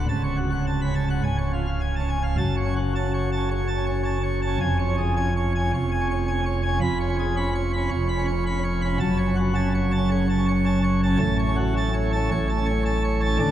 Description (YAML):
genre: classical, organ toccata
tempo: 109 BPM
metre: 4/4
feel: straight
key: F# minor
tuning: A4 = 440 Hz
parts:
  - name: pipe organ, plenum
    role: solo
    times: 0.0-13.5 s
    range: C#1 to B5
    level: -21 LUFS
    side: equal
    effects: none
room: wet cathedral reverb, RT60 7.1 s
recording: dark, warm production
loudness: -21 LUFS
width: side -11 dB against mid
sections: 0.0-2.4 A section; 2.4-13.5 B section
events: none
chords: 0.1 F#m/C#; 1.2 C#; 2.4 F#m; 4.6 C#/E#; 6.8 C#7/E#; 9.0 F#m; 11.2 F#m/A